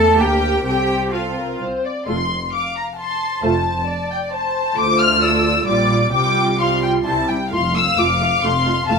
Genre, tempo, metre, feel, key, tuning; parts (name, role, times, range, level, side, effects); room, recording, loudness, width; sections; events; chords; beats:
quick classical-period movement for string orchestra; 132 BPM; 3/4; rubato; F major; A4 = 440 Hz
dark studio violin section; melody; 0.0-9.0 s; A4 to F6; -20 LUFS; left 3 dB
warm symphonic violin section; second line; 0.0-9.0 s; C5 to A5; -22 LUFS; left 3 dB
dark symphonic viola section; accompaniment; 0.0-9.0 s; G3 to F4; -21 LUFS; right 2 dB
dark chamber double bass section; bass; 0.0-9.0 s; F1 to E2; -25 LUFS; right 2 dB
warm symphonic cello section; bass; 0.0-9.0 s; D2 to A4; -24 LUFS; right 2 dB
moderate large studio reverb, RT60 0.8 s; -16 LUFS; side -5 dB against mid
0.0-2.1 A section; 2.1-9.0 B section
0.2 Bb/D; 0.7 F/C; 1.6 Csus2; 2.1 F; 4.8 Dm; 5.7 Gm7/Bb; 6.1 Csus4; 7.1 C; 7.5 F
0.19 | 0.66 1.13 1.60 | 2.07 2.52 2.98 | 3.43 3.88 4.32 | 4.77 5.22 5.67 | 6.13 6.60 7.07 | 7.53 7.98 8.44 | 8.89